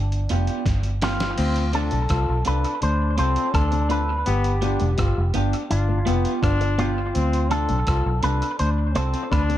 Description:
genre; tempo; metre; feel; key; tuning
roots reggae; 83 BPM; 4/4; straight; D dorian; A4 = 439 Hz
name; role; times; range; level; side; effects
electric guitar with an envelope filter; melody; 0.0-9.4 s; D4 to C5; -27 LUFS; equal; harmonic tremolo, tape echo
vintage muted fingered electric bass; bass; 0.0-9.6 s; F1 to D2; -22 LUFS; equal; none
dusty soul sampler-style drum kit; drums; 0.1-9.6 s; crash cymbal, hi-hat, kick drum, rim click, snare drum; -29 LUFS; equal; dub echo
clean electric guitar; accompaniment; 0.3-9.3 s; B3 to A4; -31 LUFS; right 3 dB; tape echo
clear trombone; second line; 1.4-9.6 s; B3 to F4; -28 LUFS; left 4 dB; tape echo
electric guitar with an envelope filter; arpeggios; 1.7-9.6 s; A2 to D3; -31 LUFS; left 7 dB; phaser
room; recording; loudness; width
light reverb; echo-heavy mix; -20 LUFS; side -12 dB against mid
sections
0.0-1.4 A section; 1.4-9.6 B section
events
drum fill 0.7-1.4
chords
0.0 G7; 1.4 Dm7; 4.3 G7; 7.1 Dm7

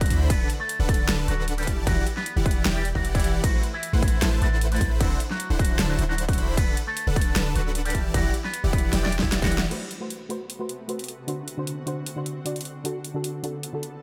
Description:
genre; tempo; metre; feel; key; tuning
future bass; 153 BPM; 4/4; half-time; A dorian; A4 = 440 Hz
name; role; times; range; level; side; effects
electric guitar with an envelope filter; melody; 0.0-9.6 s; C3 to F#5; -34 LUFS; equal; sidechain pumping, digital delay
supersaw chords; riff; 0.0-9.7 s; D3 to B5; -32 LUFS; equal; sidechain pumping
warm 808-style bass; bass; 0.0-9.7 s; D1 to D2; -28 LUFS; equal; sidechain pumping
big-room dance drum kit; drums; 0.0-13.9 s; crash cymbal, hi-hat, snare drum; -32 LUFS; equal; none
electronic kick drum; drums; 0.0-9.5 s; none; -27 LUFS; equal; none
soft round pluck; accompaniment; 9.7-13.8 s; D3 to D5; -33 LUFS; equal; subtle chorus, sidechain pumping, delay
shimmering ambient pad; sustained chords; 10.3-14.0 s; C3 to A4; -42 LUFS; equal; chorus, built-in reverb, vintage 12-bit sampler grit, sidechain pumping
room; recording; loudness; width
light reverb; faint mains hum; -25 LUFS; mono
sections
0.0-9.7 A section; 9.7-14.0 B section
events
drop 0.0-9.7; drum fill 8.9-9.7; band accent 9.6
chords
0.3 Bm7/D; 1.7 Em9; 3.4 Am69; 5.0 D7; 6.6 Bm7/D; 7.9 Em9; 9.7 Am69; 11.3 D7; 12.8 Bm7/D

